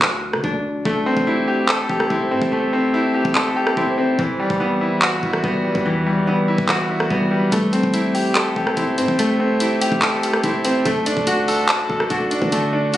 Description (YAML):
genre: hip hop, trap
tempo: 144 BPM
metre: 4/4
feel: half-time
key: A dorian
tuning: A4 = 435 Hz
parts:
  - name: concert harp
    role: arpeggios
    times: 0.0-13.0 s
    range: E3 to G4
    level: -24 LUFS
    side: left 1 dB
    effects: digital delay
  - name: clean 808-style bass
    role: bass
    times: 0.0-12.9 s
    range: E1 to D3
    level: -31 LUFS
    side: equal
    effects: none
  - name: trap drum kit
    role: drums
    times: 0.0-13.0 s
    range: handclaps, hi-hat, kick drum, rim click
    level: -22 LUFS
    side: equal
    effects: none
  - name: bright concert grand piano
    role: accompaniment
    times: 0.9-13.0 s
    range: E3 to A5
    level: -18 LUFS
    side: equal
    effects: none
room: studio reverb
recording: recorded on a phone in the room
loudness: -16 LUFS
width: side -13 dB against mid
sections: 0.0-13.0 A section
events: break 0.0-0.9; hi-hats muted 0.9-7.5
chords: 0.0 D; 0.9 Am7; 4.2 Emadd9; 7.5 Am7; 10.9 D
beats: 0.02 0.44 | 0.85 1.27 1.69 2.10 | 2.52 2.94 3.35 3.77 | 4.19 4.61 5.02 5.44 | 5.86 6.27 6.69 7.11 | 7.52 7.94 8.36 8.77 | 9.19 9.61 10.02 10.44 | 10.86 11.27 11.69 12.11 | 12.52 12.94